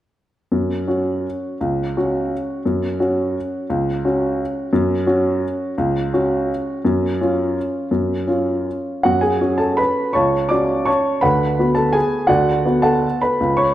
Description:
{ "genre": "classical, piano waltz", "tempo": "144-186 BPM", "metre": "3/4", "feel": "rubato", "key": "F# minor", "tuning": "A4 = 440 Hz", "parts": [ { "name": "warm upright piano", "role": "solo", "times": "0.5-13.7 s", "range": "C#2 to D6", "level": "-17 LUFS", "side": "equal", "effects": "none" } ], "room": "wet recital hall reverb, RT60 1.7 s", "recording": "dark, warm production", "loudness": "-17 LUFS", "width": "side -13 dB against mid", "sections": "0.5-9.1 A section; 9.1-13.7 B section", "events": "none", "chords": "0.5 F#5; 6.8 C#/F#; 9.1 F#m; 11.2 Bm/D" }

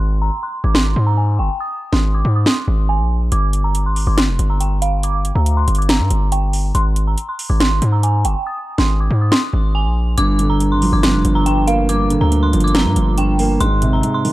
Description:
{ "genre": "hip hop, trap", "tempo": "140 BPM", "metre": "4/4", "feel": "half-time", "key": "G phrygian", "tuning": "A4 = 440 Hz", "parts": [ { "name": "dark detuned synth bell", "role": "melody", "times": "0.0-14.3 s", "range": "F5 to Eb6", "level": "-22 LUFS", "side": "right 1 dB", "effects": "chorus, phaser, low-pass filter" }, { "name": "distorted 808-style bass", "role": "bass", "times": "0.0-14.0 s", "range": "F1 to Ab2", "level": "-16 LUFS", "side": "equal", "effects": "distortion" }, { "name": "trap drum kit", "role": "drums", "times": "0.7-14.3 s", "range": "hi-hat, snare drum", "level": "-20 LUFS", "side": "equal", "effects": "overdrive" }, { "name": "dark baby grand piano", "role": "accompaniment", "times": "10.2-14.3 s", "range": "G2 to Bb3", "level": "-17 LUFS", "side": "right 2 dB", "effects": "low-pass filter" } ], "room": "little or no reverb", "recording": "dark, warm production", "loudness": "-14 LUFS", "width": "side -17 dB against mid", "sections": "0.0-14.3 A section", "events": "break 0.0-3.3; filter sweep 0.0-10.2; hi-hats muted 8.5-10.2", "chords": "0.0 Ab; 3.3 Gm; 6.7 Ab; 10.2 Gm7; 13.6 Ab" }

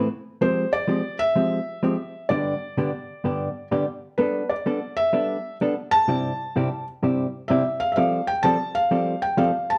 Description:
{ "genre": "country", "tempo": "127 BPM", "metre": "4/4", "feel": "swing 67% on 8ths", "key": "unclear", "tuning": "A4 = 440 Hz", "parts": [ { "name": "hollow-body jazz guitar", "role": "accompaniment", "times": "0.0-9.5 s", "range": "G2 to A4", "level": "-26 LUFS", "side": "equal", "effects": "none" }, { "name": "felt-muted upright piano", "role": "melody", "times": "0.4-9.8 s", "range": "B4 to A5", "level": "-26 LUFS", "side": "equal", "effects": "none" } ], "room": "moderate studio reverb, RT60 0.7 s", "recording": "band playing live in one room", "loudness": "-24 LUFS", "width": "mono", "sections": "0.0-9.8 A section", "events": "none", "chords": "0.4 Fmadd9; 2.3 G; 4.2 Gadd9; 6.1 C/G; 8.0 Fadd9" }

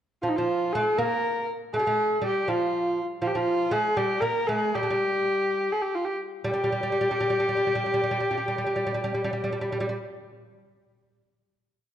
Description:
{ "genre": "Persian modal ensemble", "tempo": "64-81 BPM (dotted quarters)", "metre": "6/8", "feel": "straight", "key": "unclear", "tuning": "A4 = 440 Hz", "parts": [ { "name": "rich kamancheh", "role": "melody", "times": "0.2-9.9 s", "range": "Eb4 to Bb4", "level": "-25 LUFS", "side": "equal", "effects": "none" }, { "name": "lute", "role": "second line", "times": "0.2-10.0 s", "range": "F3 to Bb3", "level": "-29 LUFS", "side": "right 1 dB", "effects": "none" } ], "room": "moderate recital hall reverb, RT60 1.8 s", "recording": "dark, warm production", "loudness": "-24 LUFS", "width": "side -10 dB against mid", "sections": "0.2-6.4 A section; 6.4-10.2 final note", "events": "slowing down 3.2-6.4", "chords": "none" }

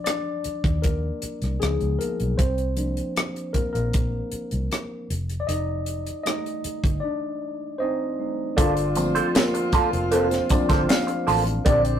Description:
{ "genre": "lush 1970s-style soul", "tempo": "78 BPM", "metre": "4/4", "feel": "straight", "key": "unclear", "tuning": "A4 = 441 Hz", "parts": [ { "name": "tine electric piano", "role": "accompaniment", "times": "0.0-12.0 s", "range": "D3 to F5", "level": "-27 LUFS", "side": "left 1 dB", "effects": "none" }, { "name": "tight funk drum kit", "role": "drums", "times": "0.1-12.0 s", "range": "hi-hat, kick drum, rim click, snare drum", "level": "-24 LUFS", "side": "equal", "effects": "none" }, { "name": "vintage muted fingered electric bass", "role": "bass", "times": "0.5-12.0 s", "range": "F1 to Eb2", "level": "-26 LUFS", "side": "equal", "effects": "none" }, { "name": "electric guitar through a small old amp", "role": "riff", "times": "8.6-11.8 s", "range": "Bb3 to D5", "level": "-24 LUFS", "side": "right 4 dB", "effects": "wah" }, { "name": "warm horn section", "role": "stabs", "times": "8.6-12.0 s", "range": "D3 to G4", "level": "-28 LUFS", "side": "equal", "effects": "none" }, { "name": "tambourine", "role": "percussion", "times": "9.0-11.5 s", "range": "none", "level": "-44 LUFS", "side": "left 4 dB", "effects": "none" } ], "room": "moderate studio reverb, RT60 0.7 s", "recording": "rough rehearsal-room recording, tube saturation", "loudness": "-22 LUFS", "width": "side -9 dB against mid", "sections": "0.0-8.6 A section; 8.6-12.0 B section", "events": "tine electric piano solo 0.0-8.6, 8.6-12.0", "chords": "0.0 Ebmaj7; 1.6 Db9; 2.4 C7sus4; 5.1 F7; 8.6 Gm11" }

